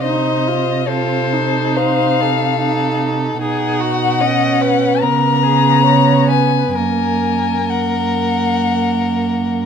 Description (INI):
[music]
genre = classical, slow romantic movement for string quartet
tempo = 63-75 BPM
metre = 4/4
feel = rubato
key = F# major from 3.4 s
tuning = A4 = 441 Hz
[part]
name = muted violin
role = melody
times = 0.0-9.6 s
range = C5 to A#5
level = -18 LUFS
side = left 9 dB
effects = none
[part]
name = muted violin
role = second line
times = 0.0-9.7 s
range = F#4 to D#5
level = -21 LUFS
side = left 3 dB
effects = none
[part]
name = muted viola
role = accompaniment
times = 0.0-9.7 s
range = A#3 to F4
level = -19 LUFS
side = right 4 dB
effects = none
[part]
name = muted cello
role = bass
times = 0.0-9.7 s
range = F#2 to C#3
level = -19 LUFS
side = right 6 dB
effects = none
[sound]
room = moderate stone room reverb, RT60 1.3 s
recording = none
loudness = -13 LUFS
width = side -7 dB against mid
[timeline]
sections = 0.0-9.7 A section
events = none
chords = 0.1 F7/C; 3.4 B; 5.0 G#madd11/C#; 6.8 F#